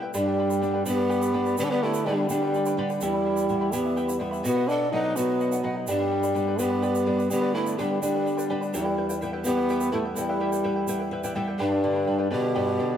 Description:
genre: andean folk, Andean ensemble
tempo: 84 BPM (dotted quarters)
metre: 6/8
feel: straight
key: unclear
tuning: A4 = 442 Hz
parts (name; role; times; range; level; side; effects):
- charango; accompaniment; 0.0-13.0 s; E4 to B5; -32 LUFS; equal; none
- nylon-string guitar; accompaniment; 0.0-13.0 s; E2 to E5; -32 LUFS; left 1 dB; none
- tube shaker; percussion; 0.1-11.4 s; none; -40 LUFS; right 5 dB; none
- clear French horn; melody; 0.2-13.0 s; G2 to D#4; -25 LUFS; left 1 dB; none
- breathy hollow large pan pipes; second line; 0.2-13.0 s; D4 to B4; -30 LUFS; right 3 dB; none
room: wet plate reverb, RT60 3.5 s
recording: heard from further back in the room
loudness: -23 LUFS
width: side -9 dB against mid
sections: 0.1-11.6 A section; 11.6-13.0 A section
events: nylon-string guitar fill 10.9-11.6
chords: 0.1 G; 3.0 Em; 4.5 B; 5.9 G; 8.7 Em; 11.6 G

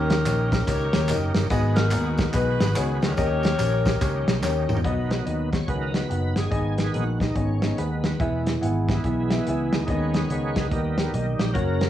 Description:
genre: uptempo gospel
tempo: 143 BPM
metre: 4/4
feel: swing 63% on 8ths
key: G# minor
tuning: A4 = 438 Hz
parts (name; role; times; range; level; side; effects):
- clear saxophone section; melody; 0.0-4.4 s; C#4 to C#5; -27 LUFS; left 3 dB; none
- warm baby grand piano; accompaniment; 0.0-11.9 s; G#2 to F#5; -29 LUFS; left 4 dB; cassette tape
- bright tonewheel organ; sustained chords; 0.0-11.9 s; C#3 to C#5; -31 LUFS; right 4 dB; slow rotary speaker, overdrive, chorus vibrato, cassette tape
- fingered electric bass; bass; 0.0-11.9 s; E1 to E2; -25 LUFS; equal; none
- warm soul drum kit; drums; 0.1-11.9 s; hi-hat, kick drum, snare drum, toms; -25 LUFS; equal; none
- tambourine and handclaps; percussion; 0.1-4.8 s; none; -37 LUFS; right 2 dB; none
- warm French horn section; sustained chords; 4.8-11.9 s; D#3 to A#4; -32 LUFS; right 2 dB; cassette tape
room: little or no reverb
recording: home recording on cassette, studio ambience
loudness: -21 LUFS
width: side -11 dB against mid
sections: 0.0-4.8 A section; 4.8-11.9 B section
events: drum fill 4.4-4.8; tonewheel organ solo 4.8-11.9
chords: 0.0 D#7; 1.5 G#m7; 3.2 D#7; 4.8 B; 6.5 G#m; 8.2 E; 9.9 G#m/D#; 10.7 D#

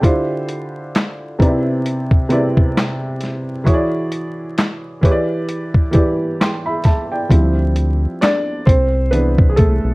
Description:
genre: lo-fi hip hop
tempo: 66 BPM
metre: 4/4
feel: swing 57% on 16ths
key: D dorian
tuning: A4 = 440 Hz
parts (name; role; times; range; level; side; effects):
- felt-muted upright piano; accompaniment; 0.0-9.9 s; C3 to C6; -18 LUFS; equal; cassette tape, low-pass filter
- lo-fi sampler-style drum kit; drums; 0.0-9.8 s; handclaps, hi-hat, kick drum, snare drum; -14 LUFS; equal; none
- round analog bass; bass; 7.3-9.9 s; B1 to D2; -16 LUFS; equal; none
room: light reverb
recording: dark, warm production, vinyl crackle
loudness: -14 LUFS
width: side -23 dB against mid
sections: 0.0-7.3 A section; 7.3-9.9 B section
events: felt piano solo 7.3-9.9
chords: 0.0 Dm11; 1.4 Cmaj9; 3.7 E9; 5.0 Em7; 7.3 Dm11; 8.7 Cmaj9

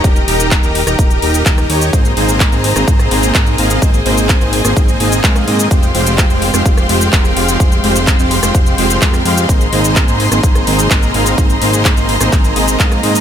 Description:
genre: EDM, festival progressive house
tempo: 127 BPM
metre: 4/4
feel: straight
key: Ab major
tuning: A4 = 440 Hz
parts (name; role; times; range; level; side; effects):
- bright symphonic string section; sustained chords; 0.0-13.2 s; Ab3 to C6; -19 LUFS; left 2 dB; sidechain pumping
- dense compressed supersaw; riff; 0.0-13.2 s; Ab3 to F5; -16 LUFS; right 1 dB; sidechain pumping, tape echo
- fat analog bass; bass; 0.0-13.2 s; Eb1 to Ab2; -17 LUFS; equal; sidechain pumping
- big-room dance drum kit; drums; 0.0-13.2 s; cabasa, handclaps, hi-hat, rim click; -18 LUFS; left 1 dB; none
- electronic kick drum; drums; 0.0-12.9 s; none; -12 LUFS; equal; none
- downlifter; sound effects; 0.0-1.9 s; none; barely audible; none; none
room: little or no reverb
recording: none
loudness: -10 LUFS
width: side -9 dB against mid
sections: 0.0-13.2 A section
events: none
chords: 0.0 Eb; 1.9 Abadd9; 5.7 Fmadd9; 9.5 Abadd9

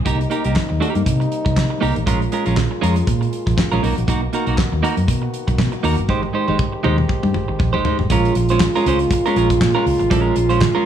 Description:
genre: disco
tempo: 119 BPM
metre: 4/4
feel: swing 56% on 16ths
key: Bb dorian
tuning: A4 = 440 Hz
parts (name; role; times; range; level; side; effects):
- vintage muted fingered electric bass; bass; 0.0-10.7 s; G1 to C3; -20 LUFS; right 1 dB; none
- clean electric guitar; accompaniment; 0.1-10.9 s; Ab3 to C5; -21 LUFS; right 4 dB; none
- mellow French horn section; sustained chords; 0.1-10.9 s; C3 to G4; -23 LUFS; left 1 dB; none
- damped 70s drum kit; drums; 0.1-10.7 s; handclaps, hi-hat, kick drum, snare drum, toms; -21 LUFS; equal; none
room: light reverb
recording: small room ambience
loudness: -15 LUFS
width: side -9 dB against mid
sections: 0.1-8.1 A section; 8.1-10.9 B section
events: drum fill 6.1-8.1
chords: 0.1 Cm7; 2.1 Bbm7; 3.8 Bmaj7; 6.1 Abmaj7; 8.1 Bbm7

